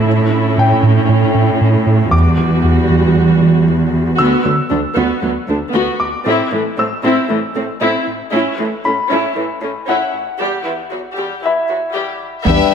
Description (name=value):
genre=cinematic, hybrid orchestral and electronic film score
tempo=116 BPM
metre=4/4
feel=straight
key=E minor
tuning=A4 = 440 Hz
part: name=warm chamber viola section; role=accompaniment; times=0.0-12.7 s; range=E3 to G4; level=-17 LUFS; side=equal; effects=none
part: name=rich symphonic cello section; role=bass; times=0.0-12.7 s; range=D2 to A2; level=-17 LUFS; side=right 2 dB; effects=none
part: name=smooth synth bass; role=riff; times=0.1-12.6 s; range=D2 to A3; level=-18 LUFS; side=right 2 dB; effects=none
part: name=bright grand piano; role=texture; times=0.6-12.5 s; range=E4 to E6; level=-21 LUFS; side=left 2 dB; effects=ping-pong delay
part: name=clear symphonic violin section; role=melody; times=12.5-12.7 s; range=E5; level=-16 LUFS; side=left 5 dB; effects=none
part: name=rich symphonic violin section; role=second line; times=12.5-12.7 s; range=G4 to B4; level=-16 LUFS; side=left 7 dB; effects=none
part: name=dark French horn section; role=sustained chords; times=12.5-12.7 s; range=G3 to D4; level=-16 LUFS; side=left 8 dB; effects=none
part: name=taiko ensemble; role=drums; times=12.5-12.7 s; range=none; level=-20 LUFS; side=left 2 dB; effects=none
room=moderate scoring stage reverb, RT60 1.6 s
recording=high-pass filter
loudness=-12 LUFS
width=side -7 dB against mid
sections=0.0-12.5 A section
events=build-up 0.0-12.5; filter sweep 0.0-12.5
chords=0.1 A; 2.1 Emadd9; 4.2 D6; 6.3 Am; 8.3 A; 10.4 Emadd9